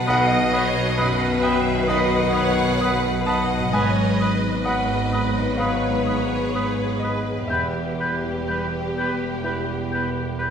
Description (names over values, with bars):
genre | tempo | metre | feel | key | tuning
cinematic, emotional film score for orchestra | 61-67 BPM | 4/4 | rubato | unclear | A4 = 440 Hz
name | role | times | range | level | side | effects
rich symphonic violin section | melody | 0.0-10.5 s | G4 to B4 | -31 LUFS | left 2 dB | none
clear symphonic violin section | second line | 0.0-10.4 s | B4 to F#5 | -30 LUFS | left 2 dB | none
bright symphonic viola section | accompaniment | 0.0-10.5 s | G4 to D#5 | -30 LUFS | equal | none
clear grand piano | accompaniment | 0.0-10.5 s | B1 to B5 | -27 LUFS | left 1 dB | none
dark French horn section | sustained chords | 0.0-10.5 s | D#3 to B3 | -29 LUFS | left 3 dB | none
concert harp | arpeggios | 0.0-10.5 s | E2 to B4 | -30 LUFS | left 3 dB | none
clear studio double bass section | bass | 0.0-10.5 s | E1 to B1 | -28 LUFS | right 3 dB | none
clear symphonic cello section | bass | 0.0-10.5 s | E2 to B2 | -27 LUFS | right 1 dB | none
clear oboe | second line | 0.1-10.5 s | B4 | -30 LUFS | right 1 dB | none
mellow hollow silver concert flute | second line | 0.1-10.5 s | D#6 to G6 | -30 LUFS | equal | none
room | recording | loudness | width
wet recital hall reverb, RT60 1.2 s | recorded in a church or concert hall | -19 LUFS | side -7 dB against mid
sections
0.0-10.5 A section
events
none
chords
0.0 B; 3.7 G#m7; 7.5 Em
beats
| 0.07 0.98 1.88 2.80 | 3.73 4.65 5.58 6.52 | 7.49 8.47 9.43 10.39